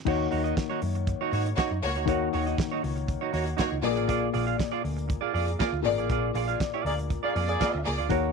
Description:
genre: disco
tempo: 119 BPM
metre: 4/4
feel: straight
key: Eb minor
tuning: A4 = 440 Hz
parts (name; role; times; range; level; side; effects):
- dark concert grand piano; accompaniment; 0.1-8.3 s; Bb2 to D5; -30 LUFS; left 14 dB; none
- semi-hollow electric guitar; accompaniment; 0.1-8.3 s; Eb4 to F5; -31 LUFS; right 16 dB; wide subtle chorus
- hollow-body short-scale picked electric bass; bass; 0.1-8.3 s; Ab1 to Ab2; -31 LUFS; equal; none
- damped 70s drum kit; drums; 0.1-8.2 s; crash cymbal, hi-hat, kick drum, snare drum; -32 LUFS; right 2 dB; none
- clear studio string section; second line; 1.3-8.1 s; Bb3 to D5; -34 LUFS; left 2 dB; tape echo
- mellow horn section; stabs; 6.9-7.8 s; Bb3 to D5; -31 LUFS; left 1 dB; none
room: light reverb, studio ambience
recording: 1960s-style stereo with parts hard left and right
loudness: -25 LUFS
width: side -5 dB against mid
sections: 0.1-8.3 A section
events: band accent 6.1-8.1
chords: 0.1 Ebm7; 3.8 Bb7

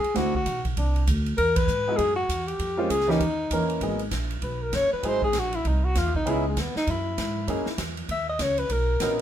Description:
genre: jazz, small-group swing and bop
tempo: 196 BPM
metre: 4/4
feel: swing 62% on 8ths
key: G# minor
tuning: A4 = 440 Hz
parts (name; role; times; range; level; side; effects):
- breathy alto saxophone; melody; 0.0-9.2 s; G#3 to E5; -26 LUFS; left 1 dB; none
- upright bass; bass; 0.0-9.2 s; F#1 to G#2; -27 LUFS; right 1 dB; none
- swinging big-band drum kit; drums; 0.0-9.1 s; hi-hat, kick drum, ride cymbal, snare drum; -32 LUFS; right 1 dB; none
- warm grand piano; accompaniment; 0.1-9.2 s; E3 to A#4; -26 LUFS; right 1 dB; none
room: moderate studio reverb, RT60 0.6 s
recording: minimal, uncompressed stereo recording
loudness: -23 LUFS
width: side -10 dB against mid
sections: 0.0-3.8 A section; 3.8-9.2 B section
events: band accent 1.5; alto saxophone solo 3.8-9.2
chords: 0.1 D9; 1.4 Eadd9; 2.6 A#m7; 3.2 D#5; 3.8 G#m7; 5.0 G#7b13; 6.3 C#m9; 7.5 F#13; 8.7 Bmaj7

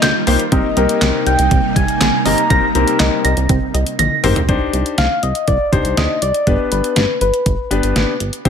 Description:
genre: synth-pop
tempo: 121 BPM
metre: 4/4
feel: straight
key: C minor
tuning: A4 = 440 Hz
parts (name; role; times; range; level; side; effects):
- soft struck synth lead; melody; 0.0-7.9 s; B4 to Bb5; -19 LUFS; left 1 dB; chorus, ping-pong delay
- string machine, violas; sustained chords; 0.0-4.4 s; C3 to F4; -21 LUFS; right 2 dB; phaser, ensemble chorus
- soft round pluck; arpeggios; 0.0-4.4 s; Bb3 to Bb6; -21 LUFS; right 4 dB; chorus, ping-pong delay
- chorused synth bass; bass; 0.0-8.5 s; G1 to D2; -18 LUFS; right 1 dB; none
- detuned 8-bit digital drum machine; drums; 0.0-8.5 s; handclaps, hi-hat, kick drum, snare drum, toms; -18 LUFS; equal; overdrive, gated reverb
- warm concert grand piano; accompaniment; 0.3-8.5 s; G3 to C5; -20 LUFS; left 6 dB; none
room: light reverb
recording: none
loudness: -13 LUFS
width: side -7 dB against mid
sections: 0.0-4.5 A section; 4.5-8.5 B section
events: drum fill 4.0-4.5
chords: 0.0 Eb; 0.5 Cm7; 4.5 Cmadd9; 6.5 G

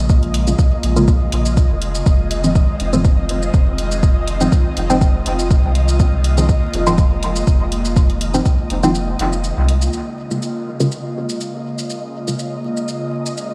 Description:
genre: dub techno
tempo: 122 BPM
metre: 4/4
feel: swing 54% on 16ths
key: Bb minor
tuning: A4 = 438 Hz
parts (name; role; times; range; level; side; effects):
- airy breathy pad; sustained chords; 0.0-13.5 s; Db3 to F4; -27 LUFS; equal; chorus, phaser, vintage 12-bit sampler grit, sidechain pumping
- soft dub sub bass; bass; 0.0-9.9 s; F1 to C2; -22 LUFS; equal; sidechain pumping
- flickering grainy texture; texture; 0.0-13.5 s; Eb5; -31 LUFS; equal; built-in reverb, sidechain pumping
- electronic kick drum; drums; 0.1-8.6 s; none; -16 LUFS; equal; overdrive
- electronic shaker and hi-hat; drums; 0.1-13.5 s; none; -32 LUFS; equal; overdrive
- filtered dub chord stab; stabs; 0.5-12.4 s; Ab2 to F4; -23 LUFS; equal; chorus, phaser, sidechain pumping, dub echo
room: light reverb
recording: played on a big sound system in a bare room, stone room reverb, vinyl crackle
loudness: -17 LUFS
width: mono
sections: 0.0-9.9 A section; 9.9-13.5 B section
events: kick drops out 8.9-9.9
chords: 0.0 Bbm7; 2.1 Fm7; 9.9 Bbm7

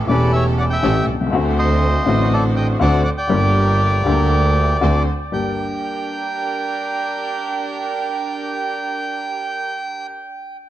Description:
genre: tango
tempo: 121 BPM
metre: 4/4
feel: rubato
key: G harmonic minor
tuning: A4 = 436 Hz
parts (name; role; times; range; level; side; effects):
- warm upright piano; accompaniment; 0.0-10.1 s; E1 to G4; -20 LUFS; left 4 dB; none
- warm studio string section; stabs; 0.0-10.1 s; C#4 to C5; -27 LUFS; right 3 dB; none
- rich double bass; bass; 0.0-5.5 s; E1 to D2; -18 LUFS; right 2 dB; none
- bandoneon; melody; 0.1-10.1 s; A4 to G5; -22 LUFS; right 1 dB; analog delay
room: light reverb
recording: echo-heavy mix, cassette tape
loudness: -16 LUFS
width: side -13 dB against mid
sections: 0.0-5.3 A section; 5.3-9.3 B section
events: none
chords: 0.0 A7; 1.3 D7; 3.3 Gm; 4.8 D7; 5.3 Gm

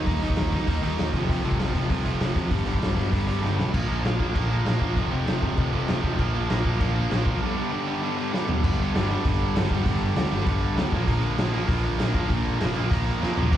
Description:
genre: punk rock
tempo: 196 BPM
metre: 4/4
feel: straight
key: unclear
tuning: A4 = 439 Hz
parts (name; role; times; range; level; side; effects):
- overdriven semi-hollow guitar; riff; 0.0-13.6 s; F2 to Eb4; -30 LUFS; left 9 dB; slapback echo
- tight distorted guitar; riff; 0.0-13.6 s; F2 to Eb4; -29 LUFS; right 9 dB; distortion
- picked electric bass; bass; 0.0-13.6 s; F1 to Eb3; -27 LUFS; equal; none
- raw garage drum kit; drums; 0.1-13.6 s; crash cymbal, hi-hat, kick drum, snare drum, splash cymbal, toms; -26 LUFS; equal; none
room: light reverb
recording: live gig heard through the venue's PA, club reverb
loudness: -22 LUFS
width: side -11 dB against mid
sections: 0.0-3.7 A section; 3.7-8.6 B section; 8.6-13.6 C section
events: drum fill 3.4-3.7, 8.3-8.6, 13.2-13.5; break 7.4-8.6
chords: 0.0 Eb; 1.1 F; 2.5 G; 3.7 Bb; 5.0 F; 6.2 Bb; 7.4 G; 10.9 Bb

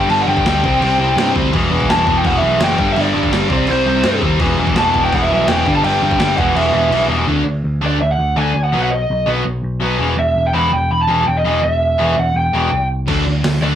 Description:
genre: punk rock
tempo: 166 BPM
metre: 4/4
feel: straight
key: E minor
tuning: A4 = 440 Hz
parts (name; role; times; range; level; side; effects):
- lead guitar through a small cranked amp; melody; 0.0-13.8 s; C5 to B5; -17 LUFS; right 1 dB; overdrive
- biting overdriven guitar; riff; 0.0-13.8 s; E2 to D4; -19 LUFS; left 3 dB; none
- thick fuzz guitar; riff; 0.0-7.3, 13.1-13.8 s; G2 to E4; -24 LUFS; equal; distortion
- tight distorted guitar; riff; 0.0-13.8 s; E2 to D4; -24 LUFS; right 5 dB; distortion
- picked electric bass; bass; 0.0-13.8 s; E1 to G2; -19 LUFS; equal; none
- breakbeat sampler-style drum kit; drums; 0.1-7.0, 13.1-13.5 s; crash cymbal, hi-hat, kick drum, snare drum; -22 LUFS; equal; none
room: moderate studio reverb, RT60 0.6 s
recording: rough rehearsal-room recording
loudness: -13 LUFS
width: side -10 dB against mid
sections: 0.0-7.3 A section; 7.3-13.8 B section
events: kick and snare drop out 6.9-7.3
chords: 0.0 G; 0.6 C; 1.5 Em; 2.8 G; 3.5 C; 4.4 Em; 5.7 G; 6.4 Em; 7.3 D5; 8.7 B; 10.0 Em; 13.1 D

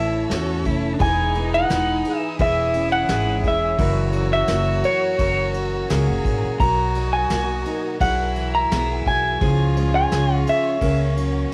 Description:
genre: acoustic folk-pop ballad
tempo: 86 BPM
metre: 4/4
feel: straight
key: unclear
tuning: A4 = 442 Hz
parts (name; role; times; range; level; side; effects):
- electric guitar through a small old amp; melody; 0.0-11.1 s; C#5 to A#5; -24 LUFS; equal; harmonic tremolo, cassette tape
- clear cello; second line; 0.0-11.5 s; C#4 to G#4; -31 LUFS; equal; cassette tape
- fingerpicked steel-string acoustic guitar; accompaniment; 0.0-11.5 s; F#2 to A#4; -31 LUFS; equal; cassette tape
- warm studio string section; sustained chords; 0.0-11.5 s; A#3 to E6; -37 LUFS; equal; cassette tape
- picked steel-string acoustic guitar; arpeggios; 0.0-11.5 s; E3 to A4; -32 LUFS; equal; cassette tape
- upright bass; bass; 0.0-11.4 s; E1 to E2; -26 LUFS; equal; tube saturation
- soft brush drum kit; drums; 0.3-11.3 s; kick drum, ride cymbal, snare drum; -30 LUFS; equal; cassette tape
room: light reverb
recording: home recording on cassette, vinyl crackle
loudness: -20 LUFS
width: mono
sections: 0.0-11.5 A section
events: none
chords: 0.0 A; 1.0 Emaj7; 2.4 C#madd9/E; 3.8 F#7; 6.6 Bmaj7; 8.0 Eadd9/B; 9.4 C#; 10.8 F#/C#

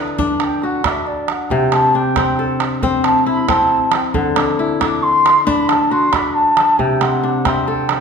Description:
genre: west african traditional, West African string and xylophone music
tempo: 91 BPM (dotted quarters)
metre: 12/8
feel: straight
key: C lydian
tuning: A4 = 440 Hz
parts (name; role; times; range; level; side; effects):
- mellow bansuri; melody; 0.0-8.0 s; D5 to D6; -16 LUFS; equal; none
- kora; arpeggios; 0.0-8.0 s; C3 to B4; -18 LUFS; left 3 dB; none
- calabash; percussion; 0.1-8.0 s; none; -21 LUFS; right 6 dB; none
room: moderate recital hall reverb, RT60 1.4 s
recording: minimal, uncompressed stereo recording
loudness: -13 LUFS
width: side -6 dB against mid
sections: 0.0-8.0 A section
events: bansuri solo 0.0-8.0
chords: 0.0 D; 1.5 C; 4.2 D; 6.8 C5

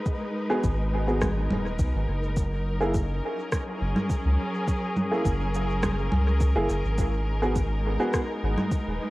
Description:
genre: ambient dub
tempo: 104 BPM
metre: 4/4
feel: straight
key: G# minor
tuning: A4 = 441 Hz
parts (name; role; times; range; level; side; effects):
- muted studio string section; sustained chords; 0.0-9.1 s; F#3 to B4; -31 LUFS; equal; cassette tape
- electronic kick drum; drums; 0.1-8.8 s; none; -28 LUFS; equal; studio reverb
- electronic shaker, rim click and congas; drums; 0.1-8.8 s; none; -31 LUFS; equal; studio reverb, dub echo
- dark upright piano; stabs; 0.5-8.2 s; A#3 to G#4; -30 LUFS; equal; cassette tape, dub echo
- soft dub sub bass; bass; 0.6-9.0 s; D#1 to C#2; -26 LUFS; equal; tube saturation
room: light reverb, small room reverb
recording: home recording on cassette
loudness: -24 LUFS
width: side -19 dB against mid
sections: 0.0-9.1 A section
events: none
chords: 0.0 G#m7; 2.4 F#add9; 7.0 G#m7

